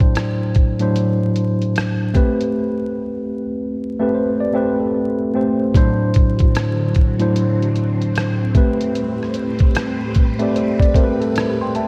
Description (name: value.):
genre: lo-fi hip hop.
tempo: 75 BPM.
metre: 4/4.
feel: swing 63% on 16ths.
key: A dorian.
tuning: A4 = 440 Hz.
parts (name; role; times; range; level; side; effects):
mellow tine electric piano; accompaniment; 0.0-11.9 s; A2 to C6; -20 LUFS; equal; none.
lo-fi sampler-style drum kit; drums; 0.0-11.9 s; hi-hat, kick drum, rim click; -19 LUFS; equal; none.
mellow tine electric piano; second line; 4.0-11.9 s; A4 to D5; -28 LUFS; equal; delay.
phased string machine; sustained chords; 6.3-11.9 s; A2 to B4; -30 LUFS; equal; ensemble chorus, phaser.
room: moderate lush hall reverb, RT60 2.4 s.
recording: dreamy mix soaked in reverb, vinyl crackle.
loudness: -18 LUFS.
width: mono.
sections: 0.0-5.7 A section; 5.7-11.9 B section.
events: break 2.5-5.7.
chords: 0.0 D9/A; 2.1 Am9; 5.7 D9/A; 8.5 Am9.